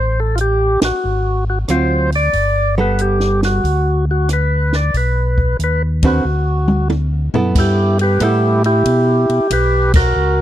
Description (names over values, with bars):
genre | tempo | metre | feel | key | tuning
soul jazz organ trio | 92 BPM | 4/4 | swing 67% on 8ths | G major | A4 = 440 Hz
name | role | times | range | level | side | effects
percussive tonewheel organ | melody | 0.0-10.4 s | E4 to D5 | -17 LUFS | equal | slow rotary speaker
mellow tonewheel organ | bass | 0.0-10.4 s | G1 to B2 | -16 LUFS | equal | chorus vibrato, slow rotary speaker
compact cocktail drum kit | drums | 0.4-10.0 s | crash cymbal, hi-hat, kick drum, ride cymbal, rim click, snare drum, toms | -19 LUFS | equal | none
archtop guitar, miked and amplified | accompaniment | 1.7-8.6 s | D3 to B4 | -19 LUFS | right 3 dB | none
room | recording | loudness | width
studio reverb | dry, close 1970s-style studio recording | -13 LUFS | side -12 dB against mid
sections
0.0-7.6 A section; 7.6-10.4 B section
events
band accent 0.7-1.0, 5.9-6.3, 9.8-10.2; drum fill 6.3-7.6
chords
0.0 Am7; 1.0 Ab6; 2.3 Gmaj9; 6.3 D69; 7.6 G69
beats
0.38 1.03 1.69 | 2.34 2.99 3.64 4.29 | 4.95 5.60 6.25 6.90 | 7.55 8.21 8.86 9.51 | 10.16